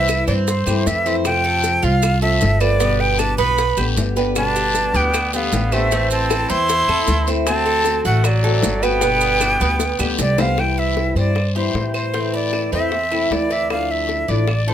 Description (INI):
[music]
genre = latin, Cuban son and guajira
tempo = 154 BPM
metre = 4/4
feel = straight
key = C major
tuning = A4 = 440 Hz
[part]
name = breathy bright jazz flute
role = melody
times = 0.0-14.7 s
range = C5 to C6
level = -20 LUFS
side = equal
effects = none
[part]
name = fingerpicked acoustic archtop guitar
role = accompaniment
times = 0.0-14.7 s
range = B2 to G4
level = -24 LUFS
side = left 3 dB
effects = none
[part]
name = Cuban tres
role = arpeggios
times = 0.0-14.7 s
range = B3 to D5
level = -25 LUFS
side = right 6 dB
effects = none
[part]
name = upright bass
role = bass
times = 0.0-14.7 s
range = G1 to A2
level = -21 LUFS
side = equal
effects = none
[part]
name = bongos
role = percussion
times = 0.1-14.7 s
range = none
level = -26 LUFS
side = left 6 dB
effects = none
[part]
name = claves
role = percussion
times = 0.1-14.7 s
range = none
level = -32 LUFS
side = right 2 dB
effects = none
[part]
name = guiro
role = percussion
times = 0.1-14.7 s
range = none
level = -31 LUFS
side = left 6 dB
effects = none
[part]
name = maracas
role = percussion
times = 0.1-10.6 s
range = none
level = -28 LUFS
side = right 6 dB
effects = none
[part]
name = bright trumpet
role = second line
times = 4.4-10.2 s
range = F#3 to E4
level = -25 LUFS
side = right 4 dB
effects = none
[sound]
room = light reverb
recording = close, detailed microphones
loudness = -16 LUFS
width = side -10 dB against mid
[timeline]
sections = 0.0-10.6 A section; 10.6-14.7 B section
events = drum fill 9.8-10.6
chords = 0.0 C6; 1.3 F; 2.8 G; 5.9 Am; 7.5 D7; 9.0 G; 10.6 C; 12.1 Am; 13.7 Dmadd9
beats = 0.09 0.47 0.86 | 1.25 1.64 2.03 2.42 | 2.81 3.19 3.58 3.97 | 4.36 4.75 5.14 5.53 | 5.92 6.30 6.69 7.08 | 7.47 7.86 8.25 8.64 | 9.03 9.41 9.80 10.19 | 10.58 10.97 11.36 11.75 | 12.14 12.53 12.92 13.31 | 13.70 14.09 14.48